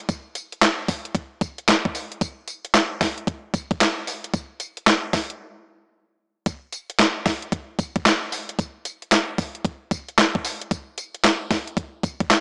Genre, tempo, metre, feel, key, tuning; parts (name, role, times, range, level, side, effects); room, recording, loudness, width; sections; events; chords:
R&B; 113 BPM; 4/4; swing 64% on 16ths
crisp 8-bit digital drum machine; drums; 0.1-12.4 s; handclaps, hi-hat, kick drum, snare drum, tambourine; -22 LUFS; equal; overdrive
moderate plate reverb, RT60 1.5 s; small speaker sound; -23 LUFS; mono
0.0-6.5 A section; 6.5-12.4 A section
break 5.4-6.5